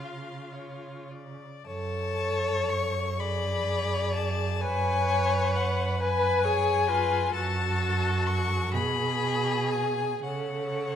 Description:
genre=classical, slow romantic movement for string quartet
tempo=34-45 BPM (dotted quarters)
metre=6/8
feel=rubato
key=F# minor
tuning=A4 = 440 Hz
part: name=clear violin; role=melody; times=0.0-11.0 s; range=C#5 to C#6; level=-30 LUFS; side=left 8 dB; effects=none
part: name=rich violin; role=second line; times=0.0-11.0 s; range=G#4 to E#5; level=-32 LUFS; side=left 3 dB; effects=none
part: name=rich viola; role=accompaniment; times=0.0-11.0 s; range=E#4 to B4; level=-32 LUFS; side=right 2 dB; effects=none
part: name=rich cello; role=bass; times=0.0-11.0 s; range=F#2 to C#3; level=-31 LUFS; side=right 2 dB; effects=none
room=moderate recital hall reverb, RT60 1.6 s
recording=none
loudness=-25 LUFS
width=side -9 dB against mid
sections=0.0-1.7 A section; 1.7-11.0 B section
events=none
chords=0.0 C#; 1.7 F#m; 3.2 Bm6/F#; 4.6 C#7/F#; 7.3 F#m; 8.7 G#m/B; 10.2 F#m/C#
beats=| 1.67 3.19 | 4.62 6.00 | 7.34 8.74 | 10.24

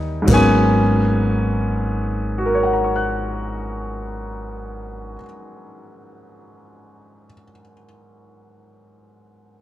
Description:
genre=jazz ballad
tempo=38 BPM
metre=4/4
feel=swing 66% on 8ths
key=G# minor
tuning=A4 = 443 Hz
part: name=clear baby grand piano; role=accompaniment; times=0.0-9.6 s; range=G#2 to F#6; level=-20 LUFS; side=equal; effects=none
part: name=upright bass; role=bass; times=0.0-5.2 s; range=G#1 to D#2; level=-22 LUFS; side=equal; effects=none
part: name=jazz brush drum kit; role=drums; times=0.3-0.5 s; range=crash cymbal, kick drum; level=-25 LUFS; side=right 2 dB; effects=none
room=light reverb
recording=none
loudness=-16 LUFS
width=side -13 dB against mid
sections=0.8-7.1 A section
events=none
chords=0.0 G#m11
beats=| 0.81 2.38 3.94 5.50

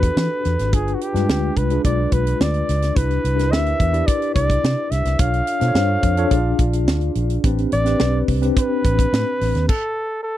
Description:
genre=polished 1980s jazz-funk pop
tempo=107 BPM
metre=4/4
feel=straight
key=unclear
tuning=A4 = 441 Hz
part: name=breathy flugelhorn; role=melody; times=0.0-10.4 s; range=F#4 to F5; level=-23 LUFS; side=equal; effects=none
part: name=mellow tine electric piano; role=accompaniment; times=0.0-9.7 s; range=Ab3 to D5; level=-23 LUFS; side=left 2 dB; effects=medium stereo tremolo, wide subtle chorus
part: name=vintage muted fingered electric bass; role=bass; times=0.0-9.7 s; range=G1 to E3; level=-20 LUFS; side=equal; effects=none
part: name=tight funk drum kit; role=drums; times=0.0-9.8 s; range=crash cymbal, hi-hat, kick drum, snare drum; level=-20 LUFS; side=right 1 dB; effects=none
room=little or no reverb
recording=dry, close 1970s-style studio recording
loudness=-17 LUFS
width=side -13 dB against mid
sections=0.0-10.4 A section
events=stop 9.7-10.4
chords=0.0 Em9; 0.7 G7b9; 3.0 Cmaj9; 5.2 Bm7b5; 6.3 Bb7; 7.4 Am11; 9.7 N.C.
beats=0.17 | 0.72 1.28 1.84 2.40 | 2.96 3.52 4.08 4.64 | 5.20 5.76 6.32 6.88 | 7.44 8.00 8.56 9.13 | 9.69 10.25

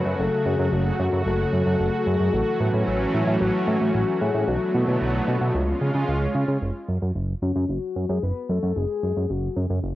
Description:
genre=synthwave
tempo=112 BPM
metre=4/4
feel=straight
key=F# minor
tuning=A4 = 440 Hz
part: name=soft octave-layered synth lead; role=melody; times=0.0-9.9 s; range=C#4 to C#5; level=-28 LUFS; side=left 5 dB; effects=chorus, cassette tape, analog delay
part: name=warm analog pad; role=sustained chords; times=0.0-6.6 s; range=C#3 to F#4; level=-24 LUFS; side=right 1 dB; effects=chorus, cassette tape
part: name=fat analog bass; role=bass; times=0.1-9.9 s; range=F#1 to C#3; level=-24 LUFS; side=right 1 dB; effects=none
room=wet booth ambience, RT60 0.2 s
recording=home recording on cassette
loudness=-21 LUFS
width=side -15 dB against mid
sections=0.0-6.6 A section; 6.6-9.9 B section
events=none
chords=0.0 F#madd9; 2.3 A6; 4.5 Bm7; 5.5 C#; 6.6 F#sus2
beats=| 0.19 0.73 1.26 1.80 | 2.33 2.87 3.40 3.94 | 4.48 5.01 5.55 6.08 | 6.62 7.16 7.69 8.23 | 8.76 9.30 9.83

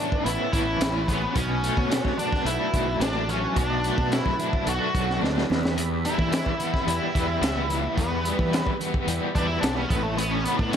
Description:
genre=psychedelic rock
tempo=109 BPM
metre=4/4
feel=straight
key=unclear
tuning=A4 = 440 Hz
part: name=octave-fuzz lead guitar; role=melody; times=0.0-10.8 s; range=A3 to F#4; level=-28 LUFS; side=left 1 dB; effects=wah, distortion, slapback echo
part: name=tonewheel organ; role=sustained chords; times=0.0-10.8 s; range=E4 to B5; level=-34 LUFS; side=right 5 dB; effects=slow rotary speaker, chorus vibrato
part: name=crunchy overdriven guitar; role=riff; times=0.0-10.8 s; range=E2 to D4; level=-28 LUFS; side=left 1 dB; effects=tremolo
part: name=crunchy breakbeat drum kit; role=drums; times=0.1-10.8 s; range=hi-hat, kick drum, snare drum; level=-27 LUFS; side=equal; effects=none
part: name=fuzz fingered electric bass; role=bass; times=0.3-10.8 s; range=A1 to E3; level=-29 LUFS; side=equal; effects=overdrive
part: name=congas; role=percussion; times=0.9-10.7 s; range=none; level=-39 LUFS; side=right 4 dB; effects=none
room=light reverb, small room reverb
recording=none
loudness=-22 LUFS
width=side -8 dB against mid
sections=0.0-10.8 A section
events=drum fill 5.1-5.8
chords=0.0 Aadd9; 1.4 Bm7; 5.5 Em; 9.9 Aadd9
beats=0.26 0.81 | 1.36 1.91 2.46 3.02 | 3.57 4.12 4.67 5.22 | 5.78 6.33 6.88 7.43 | 7.98 8.53 9.08 9.63 | 10.18 10.73

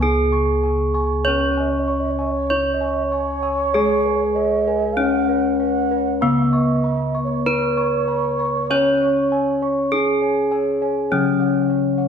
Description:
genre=Javanese gamelan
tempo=48 BPM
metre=4/4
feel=straight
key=C# slendro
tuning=A4 = 440 Hz
part: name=gamelan-type bronze metallophone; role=melody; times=0.0-12.1 s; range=B3-40c to C#5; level=-20 LUFS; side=left 1 dB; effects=none
part: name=gamelan-type bronze metallophone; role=accompaniment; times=0.0-12.1 s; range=C#3 to C#4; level=-26 LUFS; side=left 4 dB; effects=none
part: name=gamelan-type bossed gongs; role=arpeggios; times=0.0-12.1 s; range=B4-40c to C#6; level=-29 LUFS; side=left 1 dB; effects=none
part: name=gamelan-type bronze metallophone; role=arpeggios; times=0.0-12.1 s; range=B4-40c to C#6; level=-30 LUFS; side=right 5 dB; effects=none
part: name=gamelan-type bossed gongs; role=bass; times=0.0-12.1 s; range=C#2 to C#5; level=-24 LUFS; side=right 1 dB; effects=none
part: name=breathy mellow xiao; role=second line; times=1.2-10.7 s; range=B4-38c to F#5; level=-25 LUFS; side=right 5 dB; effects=none
room=wet recital hall reverb, RT60 1.5 s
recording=recorded in a church or concert hall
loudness=-17 LUFS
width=side -7 dB against mid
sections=0.0-12.1 A section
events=none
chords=none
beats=0.03 1.27 2.51 | 3.75 4.99 6.23 7.47 | 8.71 9.93 11.12

